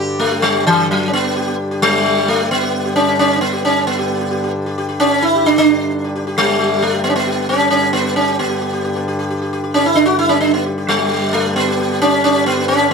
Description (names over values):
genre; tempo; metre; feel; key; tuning
indian classical; 132 BPM; 5/4; straight; G raga yaman; A4 = 440 Hz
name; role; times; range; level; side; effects
sitar; melody; 0.0-12.9 s; E3 to G4; -14 LUFS; equal; none
hand-pumped harmonium; drone; 0.0-12.9 s; G2 to D3; -22 LUFS; left 1 dB; none
room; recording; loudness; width
light reverb; close, detailed microphones; -13 LUFS; side -5 dB against mid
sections
0.0-12.9 A section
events
none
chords
none